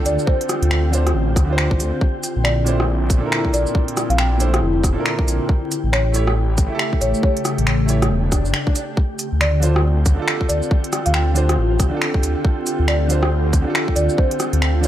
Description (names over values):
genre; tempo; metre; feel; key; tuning
future garage; 138 BPM; 4/4; swing 61% on 16ths; D minor; A4 = 440 Hz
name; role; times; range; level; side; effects
bright upright piano; accompaniment; 0.0-14.9 s; Bb2 to C#5; -26 LUFS; right 3 dB; sidechain pumping, tape echo
ethereal airy pad; sustained chords; 0.0-14.9 s; C#3 to G4; -25 LUFS; left 1 dB; ensemble chorus, built-in reverb, vintage 12-bit sampler grit, sidechain pumping
wind-like tuned noise texture; texture; 0.0-14.9 s; G4 to G5; -33 LUFS; equal; built-in reverb
folk marimba with soft mallets; melody; 0.1-14.8 s; C5 to G5; -25 LUFS; left 1 dB; tape echo
swelling detuned saw bass; bass; 0.1-14.9 s; E1 to D2; -18 LUFS; equal; sidechain pumping
organic electronic drum kit; drums; 0.1-14.9 s; cabasa, finger snaps, hi-hat, rim click; -23 LUFS; equal; overdrive
electronic kick drum; drums; 0.3-14.3 s; none; -18 LUFS; equal; overdrive
swell; sound effects; 8.2-9.0 s; none; -29 LUFS; left 2 dB; none
room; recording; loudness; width
moderate recital hall reverb, RT60 1.4 s, digital ambience; vinyl crackle; -16 LUFS; side -12 dB against mid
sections
0.0-14.9 A section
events
swell 8.2-9.0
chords
0.0 Dm7; 2.0 Bbmaj9#11; 5.5 A7; 9.0 Dm7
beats
| 0.27 0.71 1.14 1.58 | 2.01 2.45 2.88 3.32 | 3.75 4.19 4.62 5.06 | 5.49 5.93 6.36 6.80 | 7.23 7.67 8.10 8.54 | 8.97 9.40 9.84 10.27 | 10.71 11.14 11.58 12.01 | 12.45 12.88 13.32 13.75 | 14.19 14.62